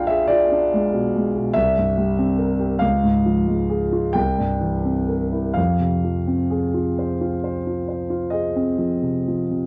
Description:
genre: classical, romantic nocturne for solo piano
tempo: 42-48 BPM (dotted quarters)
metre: 9/8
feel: rubato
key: F minor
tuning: A4 = 440 Hz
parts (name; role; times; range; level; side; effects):
- dark concert grand piano; solo; 0.0-9.7 s; B1 to B5; -21 LUFS; equal; none
room: moderate studio ambience, RT60 0.5 s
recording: worn, warbling old tape, cassette tape, warbly pitch drift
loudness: -21 LUFS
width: mono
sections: 0.0-9.7 A section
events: none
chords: 0.0 Bdim7; 1.6 C7; 2.8 Db; 4.2 C7; 5.6 Fm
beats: 0.30 | 1.55 2.82 4.16 | 5.57 6.98 8.33

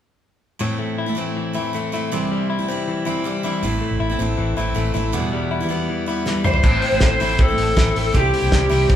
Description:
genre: jangly indie pop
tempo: 159 BPM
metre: 4/4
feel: straight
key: A minor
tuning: A4 = 440 Hz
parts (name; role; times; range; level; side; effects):
- picked steel-string acoustic guitar; accompaniment; 0.6-9.0 s; E2 to E4; -25 LUFS; right 4 dB; none
- direct-recorded clean electric guitar; arpeggios; 0.6-9.0 s; E2 to E4; -23 LUFS; left 4 dB; none
- vintage muted fingered electric bass; bass; 3.6-9.0 s; A1 to C2; -24 LUFS; right 1 dB; none
- cloth-damped thuddy drum kit; drums; 6.3-9.0 s; crash cymbal, hi-hat, kick drum, snare drum, toms; -18 LUFS; right 1 dB; none
- lead guitar through a small cranked amp; melody; 6.5-8.9 s; G4 to C5; -19 LUFS; left 1 dB; overdrive
room: moderate large studio reverb, RT60 1.1 s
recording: band playing live in one room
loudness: -18 LUFS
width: side -10 dB against mid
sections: 0.6-6.6 A section; 6.6-9.0 B section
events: drum fill 6.3-6.6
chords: 0.6 Am; 2.1 C; 3.6 Am; 5.1 Em; 6.6 Am; 8.1 C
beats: | 0.60 0.98 1.36 1.74 | 2.12 2.49 2.87 3.25 | 3.63 4.00 4.38 4.76 | 5.13 5.51 5.89 6.26 | 6.64 7.02 7.39 7.77 | 8.15 8.52 8.90

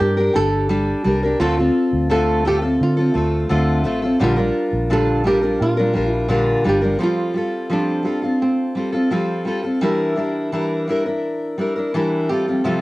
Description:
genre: acoustic pop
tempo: 85 BPM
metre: 4/4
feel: straight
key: F major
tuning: A4 = 440 Hz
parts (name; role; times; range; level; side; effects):
- flamenco guitar; melody; 0.0-12.8 s; C4 to A4; -22 LUFS; right 2 dB; cassette tape
- fingerpicked steel-string acoustic guitar; accompaniment; 0.0-12.8 s; Bb2 to Bb4; -18 LUFS; left 1 dB; cassette tape
- vintage muted fingered electric bass; bass; 0.0-7.0 s; G1 to D3; -22 LUFS; equal; none
room: moderate spring reverb, RT60 1.4 s, studio reverb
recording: home recording on cassette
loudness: -17 LUFS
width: side -19 dB against mid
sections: 0.0-7.0 A section; 7.0-12.8 B section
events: none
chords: 0.0 Gm; 1.4 Dm7; 4.2 Bb6; 7.0 Fadd9; 9.8 Em7b5; 12.3 Fadd9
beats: 0.00 0.70 | 1.40 2.10 2.80 3.50 | 4.21 4.91 5.61 6.31 | 7.01 7.72 8.42 9.12 | 9.83 10.53 11.24 11.94 | 12.64

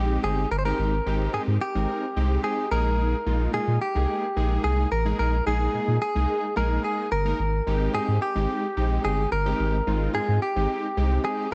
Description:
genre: dance-pop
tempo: 109 BPM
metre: 4/4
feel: straight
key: Ab major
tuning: A4 = 441 Hz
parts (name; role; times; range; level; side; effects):
- direct-recorded clean electric guitar; melody; 0.0-11.5 s; G4 to C5; -29 LUFS; equal; none
- big bright polysynth; accompaniment; 0.0-11.5 s; Ab3 to Bb4; -32 LUFS; equal; chorus
- warm sub bass; bass; 0.0-11.2 s; G1 to Bb2; -27 LUFS; equal; none
room: light reverb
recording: worn, warbling old tape, cassette tape, warbly pitch drift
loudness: -25 LUFS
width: mono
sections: 0.0-11.5 A section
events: none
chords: 0.0 Abmaj7; 2.7 Ebsus4; 7.4 Abmaj7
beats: 0.24 | 0.79 1.34 1.89 2.44 | 2.99 3.54 4.09 4.64 | 5.19 5.74 6.29 6.84 | 7.39 7.94 8.49 9.04 | 9.60 10.15 10.70 11.25

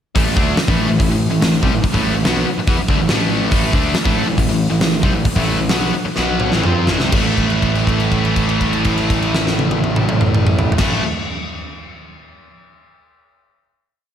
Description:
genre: hard rock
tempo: 121-142 BPM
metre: 4/4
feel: straight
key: A dorian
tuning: A4 = 437 Hz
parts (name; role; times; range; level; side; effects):
- overdriven electric guitar; riff; 0.2-11.0 s; A2 to F4; -22 LUFS; right 6 dB; none
- sludgy distorted guitar; riff; 0.2-11.0 s; A2 to F4; -24 LUFS; equal; none
- tight distorted guitar; riff; 0.2-11.0 s; A2 to F4; -22 LUFS; left 8 dB; distortion, slapback echo
- fuzz picked electric bass; bass; 0.2-11.0 s; A1 to F2; -22 LUFS; equal; overdrive
- big rock drum kit; drums; 0.2-10.9 s; crash cymbal, hi-hat, kick drum, snare drum, toms; -18 LUFS; equal; none
room: moderate concert hall reverb, RT60 1.9 s, studio reverb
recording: big arena sound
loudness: -14 LUFS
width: side -9 dB against mid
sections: 0.2-7.1 riff; 7.1-11.1 final chord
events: slowing down 3.5-7.1; drum fill 6.2-7.1; held note 7.1-10.8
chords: 0.2 Am; 7.1 A5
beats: | 0.15 0.57 0.99 1.42 | 1.84 2.26 2.68 3.10 | 3.52 3.95 4.37 4.81 | 5.25 5.70 6.16 6.63 | 7.12 7.62 8.11 8.61 | 9.11 9.60 10.10 10.60

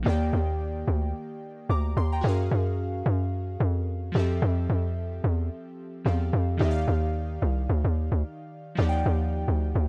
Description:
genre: amapiano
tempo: 110 BPM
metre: 4/4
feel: swing 55% on 16ths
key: Eb major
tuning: A4 = 440 Hz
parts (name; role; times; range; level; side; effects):
- glassy digital keys; accompaniment; 0.0-9.9 s; Eb3 to D6; -35 LUFS; equal; chorus
- hollow log drum bass; bass; 0.0-9.9 s; C2 to Gb2; -27 LUFS; equal; none
room: digital ambience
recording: dry, gritty hardware recording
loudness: -27 LUFS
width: mono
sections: 0.0-6.6 A section; 6.6-9.9 B section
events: drop 6.6-9.9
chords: 0.0 Ebmaj9; 2.2 Gbmaj9; 4.1 Fmaj9; 6.6 Ebmaj9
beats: | 0.06 0.60 1.15 1.70 | 2.24 2.79 3.33 3.88 | 4.42 4.97 5.51 6.06 | 6.60 7.15 7.70 8.24 | 8.79 9.33 9.88

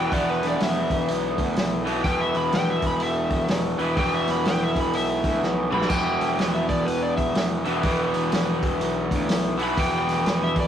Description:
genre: blues rock power trio and southern rock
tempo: 124 BPM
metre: 4/4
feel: swing 63% on 8ths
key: unclear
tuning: A4 = 439 Hz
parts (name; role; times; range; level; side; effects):
- overdriven slide guitar; melody; 0.0-10.7 s; B4 to B5; -27 LUFS; equal; none
- raw garage guitar; riff; 0.0-10.7 s; E2 to E3; -24 LUFS; equal; overdrive
- fuzz picked electric bass; bass; 0.0-10.7 s; E1 to D2; -30 LUFS; equal; overdrive
- vintage drum kit; drums; 0.1-10.6 s; crash cymbal, hi-hat, kick drum, snare drum, toms; -27 LUFS; equal; none
room: moderate studio reverb, RT60 0.6 s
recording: rough rehearsal-room recording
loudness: -21 LUFS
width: side -9 dB against mid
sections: 0.0-10.7 A section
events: electric slide guitar solo 0.0-10.7; drum fill 5.4-5.9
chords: 0.0 E5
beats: | 0.12 0.60 1.08 1.56 | 2.04 2.53 3.01 3.49 | 3.97 4.46 4.94 5.42 | 5.90 6.39 6.87 7.35 | 7.83 8.32 8.80 9.29 | 9.77 10.25

